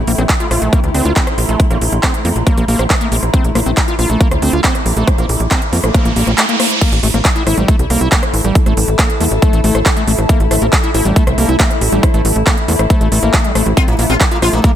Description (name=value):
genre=psychedelic trance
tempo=138 BPM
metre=4/4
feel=straight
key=A phrygian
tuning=A4 = 436 Hz
part: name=pulsing gated texture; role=sustained chords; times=0.0-14.8 s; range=A3 to E4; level=-22 LUFS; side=left 1 dB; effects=chorus, built-in reverb, sidechain pumping
part: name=tight sequencer bass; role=bass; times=0.0-14.6 s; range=A1 to F2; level=-15 LUFS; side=equal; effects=none
part: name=granular cloud pad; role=texture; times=0.0-14.8 s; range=A4 to D6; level=-24 LUFS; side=left 2 dB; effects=built-in reverb, sidechain pumping
part: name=overdriven acid bass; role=riff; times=0.1-14.7 s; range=G3 to F4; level=-20 LUFS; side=moving between left 6 dB and right 4 dB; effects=auto-pan, sidechain pumping, ping-pong delay
part: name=big-room dance drum kit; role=drums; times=0.1-14.7 s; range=crash cymbal, handclaps, hi-hat, rim click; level=-18 LUFS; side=right 1 dB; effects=overdrive
part: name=electronic kick drum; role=drums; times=0.3-14.7 s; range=none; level=-13 LUFS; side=equal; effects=overdrive
part: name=formant-sweep wobble bass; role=second line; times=1.2-6.3 s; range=G3 to C4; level=-31 LUFS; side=right 4 dB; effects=none
part: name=riser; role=sound effects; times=4.8-6.8 s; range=none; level=-22 LUFS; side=right 3 dB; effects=none
part: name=sitar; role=melody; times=13.8-14.7 s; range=Bb3 to F4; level=-19 LUFS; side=left 1 dB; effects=phaser, sidechain pumping, ping-pong delay
room=little or no reverb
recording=none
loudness=-11 LUFS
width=side -10 dB against mid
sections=0.0-6.8 A section; 6.8-14.8 B section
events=riser 4.8-6.8; drop 6.8-14.8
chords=0.0 Bb5; 6.8 A5; 13.8 Bb5